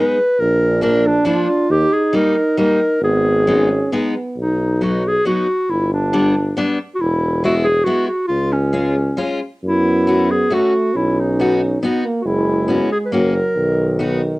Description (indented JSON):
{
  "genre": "alpine folk",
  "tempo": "137 BPM",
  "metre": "3/4",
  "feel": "rubato",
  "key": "G# harmonic minor, B major from 4.4 s",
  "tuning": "A4 = 440 Hz",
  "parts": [
    { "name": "dark clarinet", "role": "melody", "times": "0.0-14.4 s", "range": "C#4 to B4", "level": "-18 LUFS", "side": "equal", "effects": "cassette tape" },
    { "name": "mellow euphonium", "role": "second line", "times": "0.0-4.4, 9.6-14.4 s", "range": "D#3 to D#4", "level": "-21 LUFS", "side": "right 2 dB", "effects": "cassette tape" },
    { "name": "fingerpicked steel-string acoustic guitar", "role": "accompaniment", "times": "0.0-14.2 s", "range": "E#3 to F#4", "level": "-19 LUFS", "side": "left 2 dB", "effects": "cassette tape" },
    { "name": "clear tuba", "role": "bass", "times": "0.4-14.4 s", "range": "E1 to F#2", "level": "-19 LUFS", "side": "equal", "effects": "none" }
  ],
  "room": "light reverb",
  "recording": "home recording on cassette",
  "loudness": "-14 LUFS",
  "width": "side -20 dB against mid",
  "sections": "0.0-4.4 A section; 4.4-14.4 B section",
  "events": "none",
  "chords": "0.4 A#; 1.7 D#; 3.0 G#m; 4.4 B; 5.7 G; 7.0 E; 8.3 C#; 9.6 F#m7; 11.0 B; 12.3 F#7sus4; 13.1 F#; 13.6 B"
}